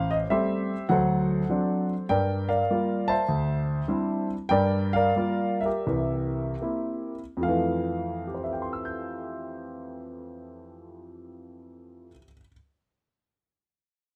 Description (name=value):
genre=solo jazz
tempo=71-102 BPM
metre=4/4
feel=swing 68% on 8ths, rubato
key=F major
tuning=A4 = 440 Hz
part: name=warm concert grand piano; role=solo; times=0.0-12.5 s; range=A1 to G6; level=-27 LUFS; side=equal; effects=none
room=light reverb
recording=close, detailed microphones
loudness=-27 LUFS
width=mono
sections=0.0-2.1 A section; 2.1-7.4 B section; 7.4-10.8 C section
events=slowing down 2.1-7.4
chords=0.0 Am7; 0.9 D7; 2.1 Gm7; 3.3 D9sus4; 4.5 Gm7; 5.9 C7; 7.4 Fmaj7